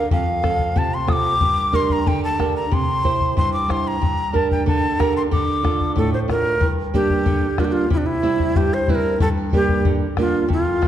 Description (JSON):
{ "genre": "andean folk, Andean ensemble", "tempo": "92 BPM", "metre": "2/4", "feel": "straight", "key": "unclear", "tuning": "A4 = 442 Hz", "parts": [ { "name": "breathy large quena", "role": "melody", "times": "0.0-10.9 s", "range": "D4 to Eb6", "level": "-21 LUFS", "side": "left 1 dB", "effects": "none" }, { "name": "flamenco guitar", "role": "accompaniment", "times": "0.0-10.9 s", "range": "F2 to C5", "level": "-22 LUFS", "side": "right 4 dB", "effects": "none" }, { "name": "bombo", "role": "percussion", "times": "0.1-10.9 s", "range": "none", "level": "-22 LUFS", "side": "left 2 dB", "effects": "none" } ], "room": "wet recital hall reverb, RT60 1.6 s", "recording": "dark, warm production", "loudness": "-17 LUFS", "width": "side -11 dB against mid", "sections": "0.0-6.6 A section; 6.6-10.9 A section", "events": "none", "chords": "0.1 F; 1.4 Gm; 2.7 C; 4.0 Gm; 5.3 Dm; 6.6 Gm; 7.9 C; 9.2 Gm", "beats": "| 0.10 0.76 | 1.41 2.06 | 2.71 3.37 | 4.02 4.67 | 5.32 5.96 | 6.61 7.26 | 7.91 8.56 | 9.20 9.85 | 10.49" }